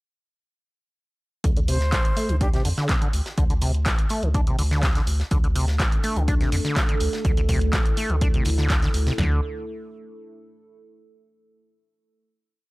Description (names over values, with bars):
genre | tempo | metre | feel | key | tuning
acid house | 124 BPM | 4/4 | straight | unclear | A4 = 440 Hz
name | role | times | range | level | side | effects
acid bass, saw | riff | 1.4-9.4 s | C3 to D4 | -28 LUFS | equal | tube saturation
round analog bass | bass | 1.4-9.4 s | A1 to F2 | -24 LUFS | equal | sidechain pumping
punchy analog drum machine | drums | 1.4-9.3 s | kick drum, snare drum, toms | -23 LUFS | equal | none
punchy analog drum machine | drums | 1.4-9.2 s | handclaps, hi-hat | -30 LUFS | equal | none
tight funk drum kit | drums | 1.4-9.2 s | hi-hat, snare drum | -37 LUFS | left 1 dB | high-pass filter on hats, high-pass filter on snare, high-pass filter on room
breathy jazz flute | melody | 1.7-2.6 s | G4 to C5 | -31 LUFS | equal | tape echo
dark analog pad | sustained chords | 6.0-9.4 s | A3 to A4 | -32 LUFS | right 1 dB | chorus, phaser, sidechain pumping
room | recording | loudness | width
little or no reverb | dry, gritty hardware recording, transformer saturation | -20 LUFS | side -22 dB against mid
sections
1.4-9.2 groove; 9.2-11.1 final chord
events
filter sweep on acid bass 1.4-9.2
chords
1.4 D5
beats
| 1.44 1.93 2.41 2.89 | 3.38 3.86 4.34 4.83 | 5.31 5.80 6.28 6.76 | 7.25 7.73 8.21 8.70 | 9.18